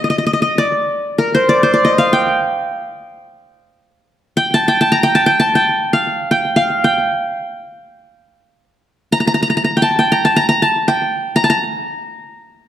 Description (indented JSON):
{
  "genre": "Turkish makam ensemble",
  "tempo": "free time",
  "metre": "none",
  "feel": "none",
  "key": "G makam nihavent",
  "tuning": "A4 = 438 Hz",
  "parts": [
    { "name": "qanun", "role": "solo", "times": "0.0-12.7 s", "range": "Bb4 to Bb5", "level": "-13 LUFS", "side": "equal", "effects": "slapback echo" }
  ],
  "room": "moderate scoring stage reverb, RT60 1.8 s",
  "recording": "dark, warm production",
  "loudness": "-13 LUFS",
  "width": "side -11 dB against mid",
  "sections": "0.0-12.7 A section",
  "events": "none",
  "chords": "none"
}